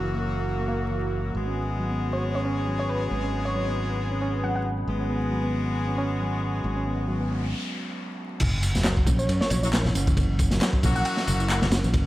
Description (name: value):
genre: breakbeat, breaks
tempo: 136 BPM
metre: 4/4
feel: swing 55% on 16ths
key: unclear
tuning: A4 = 440 Hz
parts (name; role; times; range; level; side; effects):
- deep dark ambient pad; sustained chords; 0.0-7.5 s; F#4 to E6; -37 LUFS; right 1 dB; chorus, built-in reverb, vintage 12-bit sampler grit, sidechain pumping
- reed electric piano; riff; 0.0-12.1 s; E3 to E4; -30 LUFS; right 1 dB; dub echo
- brilliant horn section; stabs; 0.0-11.7 s; F#3 to G#4; -32 LUFS; left 3 dB; dub echo
- modern bright fingered electric bass; bass; 0.0-12.1 s; F#1 to F#2; -27 LUFS; equal; none
- glassy wavetable pluck; melody; 2.1-4.6, 9.2-11.1 s; B4 to F#5; -32 LUFS; equal; chorus, AM radio sound, cassette tape, dub echo
- noise sweep and sub drop; sound effects; 7.0-10.2 s; none; -34 LUFS; equal; none
- crunchy breakbeat drum kit; drums; 8.4-12.1 s; crash cymbal, kick drum, ride cymbal, snare drum; -24 LUFS; equal; dub echo
- electronic tambourine and handclaps; drums; 8.4-12.0 s; none; -33 LUFS; equal; none
- congas; percussion; 8.4-12.0 s; none; -33 LUFS; left 1 dB; none
room: light reverb, small room reverb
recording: echo-heavy mix, vinyl crackle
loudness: -23 LUFS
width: side -16 dB against mid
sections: 0.0-8.4 A section; 8.4-12.1 B section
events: filter sweep on ambient pad 0.0-8.4; noise sweep 7.0-8.4; break 7.5-8.4; drop 8.4-12.1; impact 8.4-10.2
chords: 0.0 F#7; 1.3 G#m7; 8.4 F#7